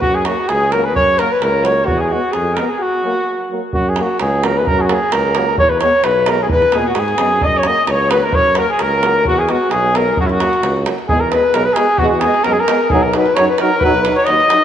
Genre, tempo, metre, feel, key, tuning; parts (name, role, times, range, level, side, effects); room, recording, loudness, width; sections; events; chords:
balkan folk, Balkan brass band; 131 BPM; 2/4; swing 54% on 16ths; F# mixolydian; A4 = 440 Hz
warm flugelhorn; melody; 0.0-14.6 s; E4 to D#5; -15 LUFS; equal; tape echo
clear alto saxophone; second line; 0.0-3.5, 6.5-14.6 s; E4 to D#5; -21 LUFS; left 3 dB
warm tuba; bass; 0.0-14.4 s; B1 to A#2; -21 LUFS; right 1 dB
davul; percussion; 0.0-14.6 s; -22 LUFS; right 3 dB
clear euphonium; accompaniment; 0.3-14.6 s; A#3 to D#4; -25 LUFS; left 3 dB
clear euphonium; accompaniment; 0.3-14.6 s; F#3 to G#3; -24 LUFS; right 5 dB
wet concert hall reverb, RT60 2.1 s; -12 LUFS; side -9 dB against mid
0.0-3.7 A section; 3.7-11.1 A section; 11.1-14.6 B section
break 2.8-3.7
0.0 F#; 1.9 E; 2.8 F#; 5.6 E; 7.4 F#; 9.3 E; 10.2 F#; 11.1 E; 12.9 B